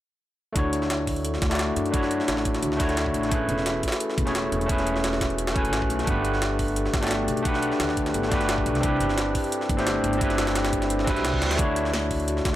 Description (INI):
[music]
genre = liquid drum and bass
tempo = 174 BPM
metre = 4/4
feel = straight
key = D major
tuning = A4 = 441 Hz
[part]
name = overdriven tine electric piano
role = accompaniment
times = 0.5-12.6 s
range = G3 to G#5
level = -26 LUFS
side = equal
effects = tape echo
[part]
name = vibraphone with soft mallets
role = arpeggios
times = 0.6-12.6 s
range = A3 to A4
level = -30 LUFS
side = left 3 dB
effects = low-pass filter, digital delay
[part]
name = upright bass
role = bass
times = 0.6-12.6 s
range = E1 to F#2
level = -30 LUFS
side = equal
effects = none
[part]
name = drum and bass drum kit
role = drums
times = 0.6-12.5 s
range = hi-hat, snare drum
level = -35 LUFS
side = right 1 dB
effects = none
[part]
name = electronic kick drum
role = drums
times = 0.6-12.5 s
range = none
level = -28 LUFS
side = equal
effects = none
[part]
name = jungle sampler-style drum kit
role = drums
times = 0.6-12.5 s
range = hi-hat, snare drum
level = -31 LUFS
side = equal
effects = overdrive, high-pass filter on hats, high-pass filter on snare
[part]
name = reverse cymbal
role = sound effects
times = 11.0-11.6 s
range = none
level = -33 LUFS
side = right 2 dB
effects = none
[sound]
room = light reverb, digital ambience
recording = none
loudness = -22 LUFS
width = side -13 dB against mid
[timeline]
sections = 0.6-12.6 A section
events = filter sweep on vibraphone 0.6-12.6; reverse cymbal 11.0-11.6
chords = 0.6 Dmaj9; 3.3 Amaj9; 6.1 Gmaj9; 8.8 Cmaj9; 11.6 Dmaj9